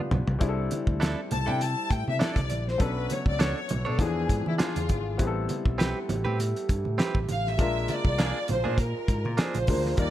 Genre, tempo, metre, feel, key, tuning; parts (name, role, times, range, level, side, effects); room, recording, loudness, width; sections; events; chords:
lush 1970s-style soul; 100 BPM; 4/4; swing 54% on 16ths; C major; A4 = 440 Hz
clear concert grand piano; accompaniment; 0.0-10.1 s; E3 to B4; -34 LUFS; left 4 dB
mellow French horn section; sustained chords; 0.0-10.1 s; C3 to B4; -37 LUFS; right 1 dB; stereo widening
fingered electric bass; bass; 0.1-10.1 s; G#1 to E3; -30 LUFS; equal
cloth-damped thuddy drum kit; drums; 0.1-10.1 s; hi-hat, kick drum, snare drum, toms; -27 LUFS; equal
congas; percussion; 0.1-9.8 s; -35 LUFS; right 4 dB
direct-recorded clean electric guitar; riff; 1.0-9.6 s; Bb3 to C#5; -33 LUFS; right 4 dB
rich symphonic violin section; melody; 1.3-10.1 s; E4 to A5; -31 LUFS; left 1 dB
studio reverb; -24 LUFS; side -13 dB against mid
0.4-10.1 A section
drum fill 0.0-0.4; violin section solo 0.4-10.1
0.4 C69; 2.8 Bm9; 4.0 E7b9; 5.2 Am9; 7.6 Bb7